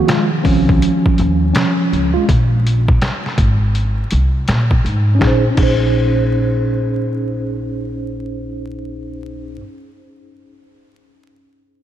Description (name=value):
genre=hip hop, jazz-hop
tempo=82 BPM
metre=4/4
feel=swing 64% on 16ths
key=Bb minor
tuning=A4 = 440 Hz
part: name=mellow tine electric piano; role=accompaniment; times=0.0-9.6 s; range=Eb3 to C5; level=-18 LUFS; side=right 1 dB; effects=medium stereo tremolo, low-pass filter
part: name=trip hop sampler-style drum kit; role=drums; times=0.1-5.8 s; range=crash cymbal, hi-hat, kick drum, snare drum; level=-18 LUFS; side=equal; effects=none
part: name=upright bass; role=bass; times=0.5-9.6 s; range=Ab1 to Bb2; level=-17 LUFS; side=equal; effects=none
room=moderate huge ambient reverb, RT60 4.9 s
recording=dreamy mix soaked in reverb, vinyl crackle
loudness=-13 LUFS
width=side -11 dB against mid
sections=0.0-5.2 A section; 5.2-8.1 B section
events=tine electric piano solo 0.0-5.2; filter sweep on tine electric piano 0.0-5.2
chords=0.0 Dbmaj7; 2.3 Bbsus2; 5.2 Bbm11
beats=0.08 0.82 1.55 | 2.28 3.01 3.74 4.47 | 5.21 5.94 6.67 7.40